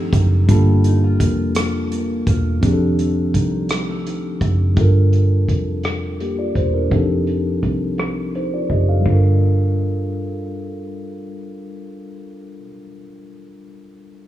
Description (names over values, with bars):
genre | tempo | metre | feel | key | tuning
slow six-eight R&B | 56 BPM (dotted quarters) | 6/8 | straight | G minor | A4 = 439 Hz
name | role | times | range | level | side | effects
mellow electric guitar | second line | 0.0-5.3 s | F2 to A4 | -26 LUFS | right 4 dB | none
mellow tine electric piano | accompaniment | 0.0-14.3 s | Eb3 to F5 | -22 LUFS | left 2 dB | medium stereo tremolo
vintage muted fingered electric bass | bass | 0.0-12.6 s | E1 to C2 | -18 LUFS | right 1 dB | none
warm soul drum kit | drums | 0.1-9.2 s | hi-hat, kick drum, ride cymbal, rim click | -21 LUFS | equal | none
room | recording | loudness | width
small room reverb | rough home demo mix, low-pass filter, studio reverb | -15 LUFS | side -13 dB against mid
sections
0.5-9.1 A section; 9.1-13.3 B section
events
none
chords
0.5 Gm9; 2.6 F13; 4.8 Gm9; 6.9 F13; 9.1 Gm9